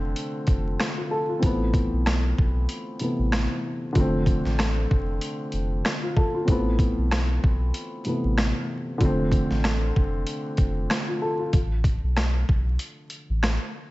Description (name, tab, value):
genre	hip hop, boom-bap hip-hop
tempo	95 BPM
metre	4/4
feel	swing 58% on 16ths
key	A minor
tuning	A4 = 440 Hz
part	dark upright piano	accompaniment	0.0-11.6 s	C3 to A4	-27 LUFS	left 1 dB	cassette tape, high-pass filter, low-pass filter
part	warm sub bass	bass	0.0-13.6 s	F1 to B1	-25 LUFS	equal	none
part	boom bap sampler-style drum kit	drums	0.2-13.6 s	hi-hat, kick drum, rim click, snare drum	-24 LUFS	equal	none
room	light reverb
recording	vinyl crackle, nothing above 7.9 kHz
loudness	-22 LUFS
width	side -19 dB against mid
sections	0.0-13.9 A section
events	none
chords	0.0 F6; 1.4 Amadd9; 4.0 F6; 6.5 Amadd9; 9.0 F6; 11.5 Asus2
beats	0.16 0.79 | 1.43 2.06 2.69 3.32 | 3.95 4.58 5.21 5.85 | 6.48 7.11 7.74 8.37 | 9.00 9.63 10.27 10.90 | 11.53 12.16 12.79 13.43